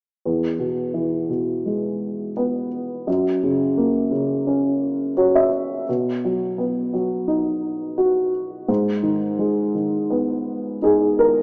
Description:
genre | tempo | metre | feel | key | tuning
folk | 85 BPM | 4/4 | straight | E lydian | A4 = 441 Hz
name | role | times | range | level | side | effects
dark upright piano | melody | 0.3-11.4 s | E2 to E5 | -22 LUFS | equal | none
room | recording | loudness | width
wet lush hall reverb, RT60 2.6 s | rough home demo mix, small speaker sound | -22 LUFS | mono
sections
0.2-11.4 A section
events
upright piano fill 4.8-5.9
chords
0.2 E; 3.1 F#; 5.9 B; 8.7 G#m

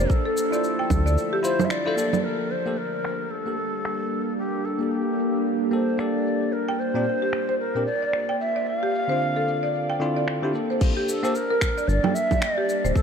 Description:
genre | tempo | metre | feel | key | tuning
organic downtempo | 112 BPM | 4/4 | swing 59% on 16ths | G dorian | A4 = 440 Hz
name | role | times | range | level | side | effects
breathy reedy ney | melody | 0.0-13.0 s | G4 to F5 | -27 LUFS | left 1 dB | ping-pong delay
bowed-like drone | sustained chords | 0.0-13.0 s | D3 to E5 | -29 LUFS | right 1 dB | built-in reverb, sidechain pumping
buzzing marimba with medium hard mallets | arpeggios | 0.0-2.2, 6.7-12.9 s | G4 to G5 | -28 LUFS | right 1 dB | ping-pong delay
round analog bass | bass | 0.0-1.2, 11.9-12.9 s | D1 to D2 | -21 LUFS | equal | sidechain pumping
deep house drum kit | drums | 0.0-13.0 s | cabasa, congas, crash cymbal, finger snaps | -29 LUFS | right 4 dB | low-pass filter on perc, studio reverb, low-pass filter on snare, low-pass filter on cymbals
electronic kick drum | drums | 0.1-1.0, 10.8-13.0 s | none | -22 LUFS | equal | studio reverb
bell-like tine electric piano | accompaniment | 0.5-12.1 s | Bb2 to C5 | -29 LUFS | left 2 dB | sidechain pumping, ping-pong delay
room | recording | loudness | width
moderate huge ambient reverb, RT60 4.2 s | none | -22 LUFS | side -6 dB against mid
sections
0.0-2.2 A section; 2.2-10.8 B section; 10.8-13.0 A section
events
band accent 1.7; filter sweep on synth drone 2.2-10.8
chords
0.1 Dm7; 2.2 Gmadd9; 6.5 Bb6; 8.7 Dm7; 10.8 Gmadd9

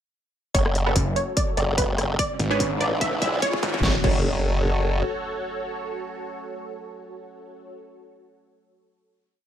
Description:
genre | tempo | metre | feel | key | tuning
heavy wobble dubstep | 146 BPM | 4/4 | swing 54% on 16ths, half-time | F# minor | A4 = 440 Hz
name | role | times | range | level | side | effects
wide unison pluck | melody | 0.5-7.9 s | B4 to E5 | -27 LUFS | right 1 dB | ping-pong delay
lush unison pad | sustained chords | 1.2-7.7 s | G#3 to D5 | -32 LUFS | equal | chorus, phaser, vintage 12-bit sampler grit, sidechain pumping
formant-sweep wobble bass | bass | 0.5-5.0 s | F#1 to B1 | -23 LUFS | equal | chorus, overdrive
big-room dance drum kit | drums | 0.5-4.2 s | crash cymbal, hi-hat, rim click, snare drum | -29 LUFS | left 1 dB | small room ambience
electronic kick drum | drums | 0.5-4.2 s | none | -27 LUFS | equal | overdrive, small room ambience
riser and impact | sound effects | 1.9-7.8 s | none | -32 LUFS | equal | none
orchestra-hit-like synth stab | stabs | 0.9-7.9 s | C#4 to B4 | -30 LUFS | right 3 dB | built-in reverb, ping-pong delay
snarling distorted saw bass | bass | 1.0-3.8 s | F#1 to G#1 | -25 LUFS | equal | distortion, overdrive
room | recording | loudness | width
light reverb | high-pass filter | -21 LUFS | side -10 dB against mid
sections
0.5-3.8 build; 3.8-7.1 final chord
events
build-up 0.5-3.8; filter sweep on analog synth pad 0.5-3.8; filter sweep 0.5-3.8; riser 1.9-3.8; drum fill 2.2-3.8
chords
0.5 F#m; 2.2 G#dim; 3.8 F#m

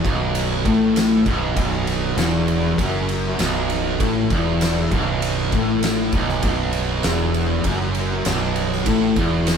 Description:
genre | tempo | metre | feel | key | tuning
stoner and doom metal | 99 BPM | 4/4 | straight | unclear | A4 = 441 Hz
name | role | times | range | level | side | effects
fuzz guitar | riff | 0.0-9.6 s | B1 to A2 | -19 LUFS | equal | distortion
fuzz fingered electric bass | bass | 0.0-9.6 s | B0 to A1 | -26 LUFS | equal | overdrive
oversized low-tuned drum kit | drums | 0.0-9.6 s | kick drum, ride cymbal, snare drum | -24 LUFS | equal | none
room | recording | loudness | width
moderate studio ambience, RT60 0.5 s | band playing live in one room | -18 LUFS | side -7 dB against mid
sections
0.0-9.6 A section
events
none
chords
0.0 B5

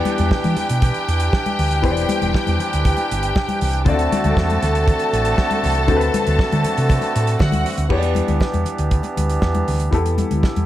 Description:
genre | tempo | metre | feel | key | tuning
disco | 119 BPM | 4/4 | straight | E minor | A4 = 443 Hz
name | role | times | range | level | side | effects
clear studio string section | second line | 0.0-7.9 s | F#4 to A5 | -23 LUFS | left 1 dB | slapback echo
clear concert grand piano | accompaniment | 0.0-10.7 s | D3 to D5 | -25 LUFS | left 4 dB | none
hand-pumped harmonium | sustained chords | 0.0-10.7 s | D3 to B4 | -25 LUFS | right 2 dB | none
damped 70s drum kit | drums | 0.1-10.7 s | crash cymbal, hi-hat, kick drum, snare drum | -22 LUFS | right 1 dB | none
congas | percussion | 0.1-10.7 s | none | -26 LUFS | left 4 dB | none
hollow-body short-scale fingered electric bass | bass | 0.2-10.7 s | E1 to E3 | -20 LUFS | right 1 dB | none
room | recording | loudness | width
light reverb, small room ambience | none | -16 LUFS | side -13 dB against mid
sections
0.0-7.9 A section; 7.9-10.7 B section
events
none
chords
0.0 Em7; 3.9 D7; 7.9 Em7

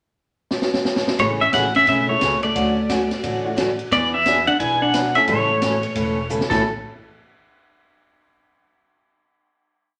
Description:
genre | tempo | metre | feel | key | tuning
country, western swing | 176 BPM | 4/4 | swing 63% on 8ths | A major | A4 = 440 Hz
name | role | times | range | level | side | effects
swinging big-band drum kit | drums | 0.5-6.6 s | crash cymbal, hi-hat, kick drum, ride cymbal, snare drum | -28 LUFS | equal | none
pedal steel guitar | melody | 1.2-6.6 s | A4 to G#5 | -21 LUFS | equal | none
hollow-body jazz guitar | second line | 1.2-6.6 s | A3 to E4 | -28 LUFS | equal | none
picked steel-string acoustic guitar | accompaniment | 1.2-6.6 s | A2 to A4 | -27 LUFS | equal | none
upright bass | bass | 1.2-6.6 s | E1 to E2 | -31 LUFS | equal | none
honky-tonk upright piano | accompaniment | 2.1-6.6 s | A3 to A4 | -32 LUFS | equal | none
room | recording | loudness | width
wet studio reverb, RT60 0.9 s | none | -19 LUFS | mono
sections
0.0-1.2 pickup bar; 1.2-6.6 A section; 6.6-8.0 final hit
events
drum fill 0.5-1.2, 6.3-6.6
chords
0.0 N.C.; 1.2 Amaj7; 2.6 Dmaj7; 3.9 E7; 5.3 A; 6.6 N.C.

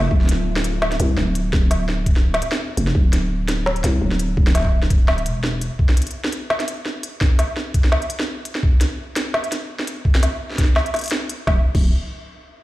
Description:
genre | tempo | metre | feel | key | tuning
half-time drum and bass | 169 BPM | 4/4 | swing 55% on 16ths, half-time | unclear | A4 = 438 Hz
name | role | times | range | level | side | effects
growling 808-style bass | bass | 0.0-5.7, 11.5-11.9 s | D1 to C2 | -20 LUFS | equal | none
electronic kick drum | drums | 0.1-11.8 s | none | -16 LUFS | equal | none
organic electronic drum kit | drums | 0.2-11.8 s | crash cymbal, hi-hat, snare drum | -23 LUFS | equal | none
room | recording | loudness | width
digital ambience | played on a big sound system in a bare room, large studio reverb | -17 LUFS | side -17 dB against mid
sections
0.1-11.5 A section; 11.5-12.6 B section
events
none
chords
none

